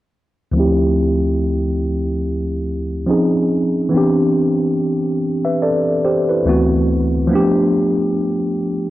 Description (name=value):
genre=R&B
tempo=71 BPM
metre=4/4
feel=swing 58% on 16ths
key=D dorian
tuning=A4 = 441 Hz
part: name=mellow tine electric piano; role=accompaniment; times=0.5-8.9 s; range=D2 to E5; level=-15 LUFS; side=equal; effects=medium stereo tremolo, low-pass filter
room=moderate lush hall reverb, RT60 2.5 s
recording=worn, warbling old tape, cassette tape, warbly pitch drift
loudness=-15 LUFS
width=side -15 dB against mid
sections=0.5-8.9 A section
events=filter sweep on tine electric piano 0.5-8.9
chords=0.5 Dm11; 3.1 C#maj7; 3.9 Cmaj7; 6.5 D13; 7.3 G9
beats=| 0.55 1.39 2.23 3.08 | 3.92 4.77 5.62 6.46 | 7.30 8.15